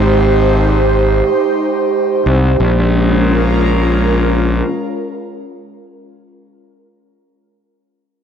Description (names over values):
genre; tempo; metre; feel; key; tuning
ambient dub; free time; none; none; Bb dorian; A4 = 440 Hz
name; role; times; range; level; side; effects
airy breathy pad; sustained chords; 0.0-6.1 s; Ab3 to C5; -14 LUFS; right 2 dB; chorus
fuzz fingered electric bass; bass; 0.0-4.6 s; Ab1 to C2; -13 LUFS; left 1 dB; overdrive, tube saturation
room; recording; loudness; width
wet echo chamber reverb, RT60 1.7 s; none; -11 LUFS; side -8 dB against mid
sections
0.0-2.6 A section; 2.6-5.3 B section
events
none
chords
0.0 Abmaj7; 2.6 Bbm7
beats
free time